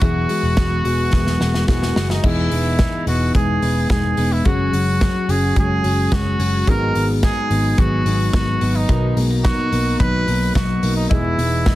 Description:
jangly indie pop; 108 BPM; 4/4; straight; A4 = 440 Hz
clear trumpet; melody; 0.0-11.8 s; D#4 to B4; -23 LUFS; right 1 dB
fingerpicked plugged-in steel-string acoustic guitar; accompaniment; 0.0-11.8 s; G#2 to A#4; -27 LUFS; right 4 dB
warm upright piano; accompaniment; 0.0-11.8 s; B3 to A#5; -30 LUFS; left 4 dB; plate reverb
twelve-string electric guitar; arpeggios; 0.0-11.8 s; G#2 to F#4; -23 LUFS; left 3 dB
vintage muted picked electric bass; bass; 0.0-11.7 s; E1 to B1; -20 LUFS; equal
modern studio drum kit; drums; 0.0-11.8 s; crash cymbal, hi-hat, kick drum, snare drum; -21 LUFS; equal
light reverb; dense, heavily limited modern master, vinyl crackle; -15 LUFS; side -16 dB against mid
0.0-2.2 A section; 2.2-11.8 B section
drum fill 1.1-2.2
0.0 Eadd9; 2.2 Emaj7; 4.5 F#sus2; 6.7 G#m7; 8.9 Bmaj7; 11.1 Emaj7

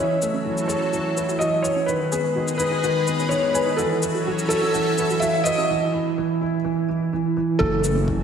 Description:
piano and strings electronica; 126 BPM; 4/4; straight; F# dorian; A4 = 440 Hz
felt-muted upright piano; melody; 0.0-8.0 s; A4 to E5; -23 LUFS; left 1 dB; low-pass filter, diffuse ambient delay
lush unison pad; sustained chords; 0.0-8.2 s; F#3 to E5; -29 LUFS; equal; chorus, sidechain pumping
dark concert grand piano; riff; 0.0-8.2 s; D#3 to F#4; -24 LUFS; right 3 dB; lush chorus, diffuse ambient delay
warbly dusty pluck; arpeggios; 0.2-8.1 s; C#4 to C#5; -33 LUFS; right 1 dB; chorus, sidechain pumping, diffuse ambient delay
shaker; drums; 0.2-7.9 s; -33 LUFS; left 3 dB
dark detuned saw bass; bass; 7.6-8.2 s; F#1; -22 LUFS; equal; sidechain pumping
electronic kick drum; drums; 7.6-8.2 s; -26 LUFS; equal
wet lush hall reverb, RT60 1.8 s, digital ambience; dreamy mix soaked in reverb; -20 LUFS; side -7 dB against mid
0.0-7.6 A section
build-up 0.0-7.6; filter sweep on felt piano 0.0-7.6; break 5.7-7.6
0.0 F#m7; 1.9 G#m; 3.8 F#m7; 5.7 N.C.; 7.6 F#m7

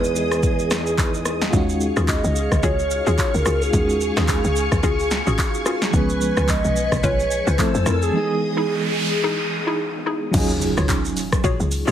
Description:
amapiano; 109 BPM; 4/4; swing 58% on 16ths; Eb minor; A4 = 440 Hz
hollow clarinet-like synth lead; melody; 0.0-8.8 s; Ab4 to Eb5; -25 LUFS; right 1 dB; chorus, phaser, digital delay
FM electric piano with tremolo; accompaniment; 0.0-11.9 s; E3 to A4; -26 LUFS; right 1 dB; phaser
ensemble organ-string; sustained chords; 0.0-10.3 s; G#4 to E6; -26 LUFS; equal; ensemble chorus
warm tuba; bass; 0.0-1.5 s; E2; -26 LUFS; equal
deep house drum kit; drums; 0.0-11.9 s; crash cymbal, handclaps, hi-hat, kick drum, rim click, shaker, snare drum; -22 LUFS; equal
woody log drum bass; bass; 1.5-11.9 s; Ab1 to F2; -22 LUFS; equal
hollow square pluck; stabs; 2.0-11.9 s; Db4 to Db5; -27 LUFS; left 2 dB; chorus, digital delay
noise sweep and impact; sound effects; 8.5-11.9 s; -28 LUFS; right 1 dB
light reverb; heavily compressed radio sound, multiband compression; -18 LUFS; side -10 dB against mid
0.0-10.3 A section; 10.3-11.9 B section
break 8.1-10.3; noise sweep 8.5-10.3; drop 10.3-11.9; impact 10.3-11.9
0.0 Emaj7; 1.5 Ebm11; 5.9 Db7; 7.6 Fmaj7; 8.1 Emaj7; 10.3 Ebm11

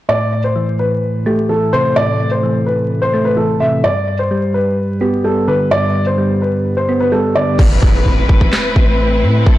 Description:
hip hop, trap; 128 BPM; 4/4; half-time; A minor; A4 = 440 Hz
dark concert grand piano; melody; 0.1-7.6 s; G4 to E5; -16 LUFS; left 1 dB; tape echo
soft electric-piano-like synth keys; accompaniment; 0.1-7.6 s; G2 to B3; -16 LUFS; equal; chorus, tremolo
dark symphonic string section; sustained chords; 7.6-9.6 s; A3 to B4; -17 LUFS; left 2 dB
warm 808-style bass; bass; 7.6-9.6 s; A1 to A2; -14 LUFS; equal
trap drum kit; drums; 7.6-9.6 s; crash cymbal, handclaps, kick drum, snare drum; -13 LUFS; equal
impact; sound effects; 7.6-9.5 s; -20 LUFS; equal
light reverb; blown-out, overdriven recording, vinyl crackle, overdrive; -12 LUFS; side -15 dB against mid
0.1-7.6 A section; 7.6-9.6 B section
hi-hats muted 7.6-9.6; impact 7.6-9.5
0.1 Amadd9; 3.8 G; 7.6 Amadd9

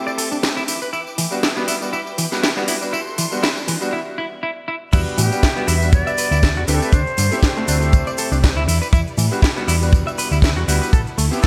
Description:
nu-disco, nu disco; 120 BPM; 4/4; swing 55% on 16ths; E minor; A4 = 441 Hz
bright concert grand piano; accompaniment; 0.0-11.5 s; G3 to G4; -28 LUFS; equal; analog chorus, low-pass filter
clear studio violin section; sustained chords; 0.0-11.5 s; G3 to D6; -34 LUFS; equal; sidechain pumping
semi-hollow electric guitar; riff; 0.1-11.5 s; D3 to E5; -28 LUFS; equal; lush chorus, low-pass filter
house drum kit; drums; 0.1-11.5 s; crash cymbal, hi-hat, snare drum, tambourine; -25 LUFS; equal; gated reverb
hollow-body short-scale fingered electric bass; bass; 0.3-11.3 s; A1 to A2; -22 LUFS; equal; tube saturation, sidechain pumping, high-pass filter
kick drum; drums; 4.9-11.5 s; -17 LUFS; equal
tube shaker; percussion; 4.9-11.5 s; -36 LUFS; equal
breathy silver concert flute; melody; 5.2-8.6 s; G4 to E5; -26 LUFS; equal; digital delay
light reverb, small room ambience; bright 1980s-style digital production; -19 LUFS; mono
0.0-4.9 A section; 4.9-11.5 B section
build-up 0.0-4.9; filter sweep on grand piano 0.0-4.9; break 3.9-4.9; drop 4.9-11.5
0.0 D7sus4; 0.7 Em7; 2.9 Am7; 4.9 Em7; 6.7 D7sus4; 8.7 Em7; 10.9 Am7

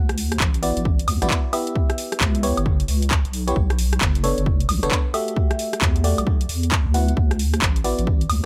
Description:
UK garage, two-step garage; 133 BPM; 4/4; swing 63% on 16ths; A4 = 440 Hz
deep soft wobble bass; bass; 0.0-8.4 s; F#1 to E2; -24 LUFS; equal; chorus, sidechain pumping
house drum kit; drums; 0.1-8.4 s; handclaps, hi-hat, rim click, woodblock; -27 LUFS; equal; overdrive
electronic kick drum; drums; 0.4-8.2 s; -23 LUFS; equal; overdrive
FM electric piano; stabs; 0.6-8.0 s; A3 to F#5; -28 LUFS; equal; chorus, phaser, tape echo
little or no reverb; -21 LUFS; mono
0.0-8.5 A section
0.0 D69; 1.5 C#m7b5; 3.6 Bm9; 5.1 Em11; 6.9 D69

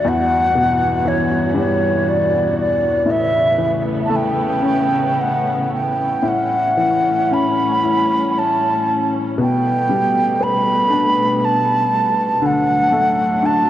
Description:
celtic folk, Celtic slow air; 58 BPM; 3/4; uneven beats, rubato; A4 = 440 Hz
breathy mellow wooden flute; melody; 0.0-13.7 s; C#5 to B5; -17 LUFS; right 1 dB; tape echo
felt-muted upright piano; accompaniment; 0.0-13.7 s; E2 to E4; -19 LUFS; left 2 dB
rich studio string section; sustained chords; 0.0-13.7 s; D2 to F#4; -25 LUFS; right 2 dB
wet cathedral reverb, RT60 5.2 s; worn, warbling old tape, cassette tape, warbly pitch drift; -15 LUFS; side -12 dB against mid
0.0-13.7 A section
0.1 Emadd9; 3.1 Aadd9; 6.3 A7; 9.4 Gadd9/B; 12.4 D

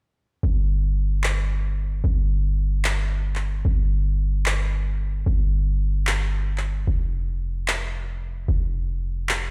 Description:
future bass; 149 BPM; 4/4; half-time; A4 = 440 Hz
warm 808-style bass; bass; 0.4-9.5 s; F1 to G1; -24 LUFS; equal
electronic handclaps; drums; 1.2-9.4 s; -29 LUFS; equal; small room reverb
digital ambience; played on a big sound system in a bare room, stone room reverb; -24 LUFS; mono
0.4-9.5 A section

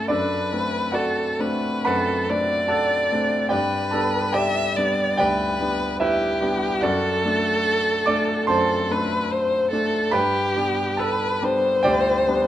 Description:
classical, romantic duo for violin and grand piano; 72 BPM; 4/4; rubato; G major; A4 = 440 Hz
warm violin; melody; 0.0-12.5 s; G4 to E5; -22 LUFS; equal
clear concert grand piano; accompaniment; 0.0-12.5 s; D2 to D6; -22 LUFS; equal
moderate recital hall reverb, RT60 1.7 s; -19 LUFS; side -12 dB against mid
0.0-12.5 A section
0.1 D7/F#; 3.5 G; 6.8 D7/F#; 10.1 G

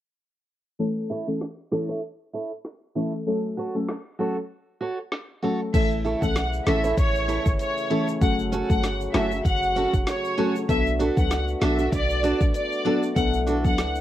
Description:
dancehall; 97 BPM; 4/4; swing 56% on 16ths; A4 = 440 Hz
deep mellow chord stab; accompaniment; 0.8-13.8 s; E3 to A4; -26 LUFS; left 2 dB; chorus
picked steel-string acoustic guitar; arpeggios; 1.1-13.6 s; C#4 to C#5; -27 LUFS; right 3 dB
afro-pop drum kit; drums; 1.4-13.9 s; crash cymbal, hi-hat, kick drum, snare drum; -25 LUFS; equal; cassette tape
warm symphonic violin section; melody; 5.7-13.9 s; C#5 to F#5; -27 LUFS; equal; analog delay
dark French horn section; sustained chords; 5.7-14.0 s; C#3 to F#4; -31 LUFS; left 1 dB; sidechain pumping
clean 808-style bass; bass; 5.7-14.0 s; E1 to C#2; -28 LUFS; equal
tube shaker and timbales; percussion; 5.7-14.0 s; -40 LUFS; left 7 dB
small room ambience; home recording on cassette, low-pass filter; -22 LUFS; side -12 dB against mid
0.8-5.7 A section; 5.7-14.0 B section
filter sweep 0.8-5.7
0.8 A; 3.3 F#m; 5.7 A; 8.2 F#m; 10.7 Bm7

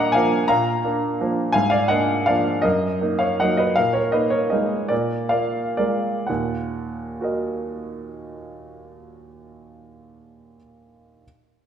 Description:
classical, piano waltz; 117-178 BPM; 3/4; rubato; Eb minor; A4 = 440 Hz
clear baby grand piano; solo; 0.0-11.3 s; Eb2 to D6; -20 LUFS; equal
moderate scoring stage reverb, RT60 1.6 s; -19 LUFS; side -8 dB against mid
0.0-6.3 A section; 6.3-9.1 B section
slowing down 3.2-6.3
0.0 Bb; 1.5 Bb7/Ab; 2.6 Ebm/Gb; 3.8 Bb7sus4; 4.9 Bb7; 6.3 Ebm

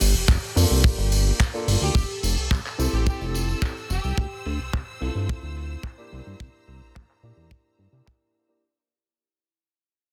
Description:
nu-disco, nu disco; 108 BPM; 4/4; straight; A4 = 440 Hz
bright studio string section; sustained chords; 0.0-8.6 s; G4 to E6; -41 LUFS; equal; sidechain pumping
chorused synth bass; bass; 0.0-8.0 s; F1 to C3; -26 LUFS; equal; sidechain pumping
tight funk drum kit; drums; 0.0-8.5 s; handclaps, hi-hat; -32 LUFS; equal; low-pass filter on cymbals, small room ambience, low-pass filter on hats, low-pass filter on perc, low-pass filter on snare, low-pass filter on room
tambourine; percussion; 0.0-4.1 s; -37 LUFS; equal
kick drum; drums; 0.3-8.2 s; -23 LUFS; equal; small room ambience
warm grand piano; accompaniment; 0.6-8.6 s; Bb3 to A4; -35 LUFS; equal; vintage 12-bit sampler grit, sidechain pumping, low-pass filter, slapback echo
rich chamber violin section; melody; 1.8-4.2 s; G4; -38 LUFS; equal; tape echo
studio ambience; dense, heavily limited modern master; -24 LUFS; mono
0.0-8.6 A section
fade-out 0.0-8.6; filter sweep on analog synth bass 0.0-8.6; filter sweep on grand piano 0.0-8.6
0.0 Gm7; 2.0 Fmaj7; 4.2 Dm9; 6.1 C7

